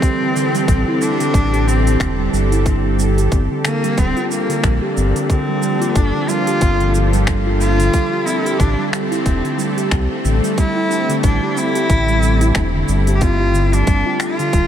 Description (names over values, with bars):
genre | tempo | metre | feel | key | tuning
organic downtempo | 91 BPM | 4/4 | swing 58% on 16ths | unclear | A4 = 436 Hz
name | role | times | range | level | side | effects
rich cello | melody | 0.0-14.7 s | Bb3 to G4 | -21 LUFS | equal | analog delay
bowed-like drone | sustained chords | 0.0-14.7 s | E3 to A4 | -22 LUFS | left 1 dB | built-in reverb, sidechain pumping
steel tongue drum | arpeggios | 0.0-14.7 s | D3 to G4 | -21 LUFS | right 1 dB | analog delay
electronic kick drum | drums | 0.0-14.7 s | none | -16 LUFS | equal | overdrive
organic electronic drum kit | drums | 0.0-14.7 s | cabasa, finger snaps, hi-hat | -28 LUFS | equal | overdrive
round analog bass | bass | 0.7-14.7 s | D1 to C2 | -17 LUFS | equal | sidechain pumping
room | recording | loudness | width
moderate huge ambient reverb, RT60 8.2 s | dreamy mix soaked in reverb | -14 LUFS | side -10 dB against mid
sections
0.0-14.7 A section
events
none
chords
0.0 Am7; 2.7 Gm9; 7.9 Am7; 13.2 Gm9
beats
| 0.03 0.69 1.35 2.01 | 2.67 3.32 3.98 4.64 | 5.30 5.96 6.62 7.28 | 7.94 8.60 9.26 9.92 | 10.58 11.24 11.90 12.55 | 13.21 13.87 14.53